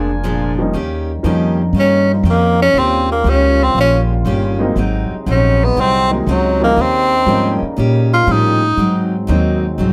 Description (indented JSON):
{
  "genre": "jazz, big band swing",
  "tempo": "119 BPM",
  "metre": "4/4",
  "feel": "swing 69% on 8ths",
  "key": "Eb mixolydian",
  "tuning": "A4 = 441 Hz",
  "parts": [
    { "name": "picked steel-string acoustic guitar", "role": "accompaniment", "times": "0.0-9.9 s", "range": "Ab2 to G4", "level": "-24 LUFS", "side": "equal", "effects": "none" },
    { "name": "warm trumpet section", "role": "stabs", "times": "0.0-0.5 s", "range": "F4 to Ab5", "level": "-29 LUFS", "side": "equal", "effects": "none" },
    { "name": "upright bass", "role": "bass", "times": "0.0-9.9 s", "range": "F1 to Bb2", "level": "-19 LUFS", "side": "equal", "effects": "none" },
    { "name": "warm baby grand piano", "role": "accompaniment", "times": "0.6-1.6, 4.6-9.6 s", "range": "F3 to F4", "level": "-22 LUFS", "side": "equal", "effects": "none" },
    { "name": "dark trombone section", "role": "sustained chords", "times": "0.7-9.9 s", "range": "C3 to Bb4", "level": "-28 LUFS", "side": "equal", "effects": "none" },
    { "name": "warm tenor saxophone", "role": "melody", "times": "1.8-9.1 s", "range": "Eb3 to F4", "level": "-16 LUFS", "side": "equal", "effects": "none" }
  ],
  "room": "light reverb",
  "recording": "none",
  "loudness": "-14 LUFS",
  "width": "mono",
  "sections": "0.7-9.9 A section",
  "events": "tenor saxophone solo 0.7-9.9",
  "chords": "0.0 Bb7; 0.7 Eb7; 4.8 Ab7; 6.8 Eb7; 8.8 Ab7"
}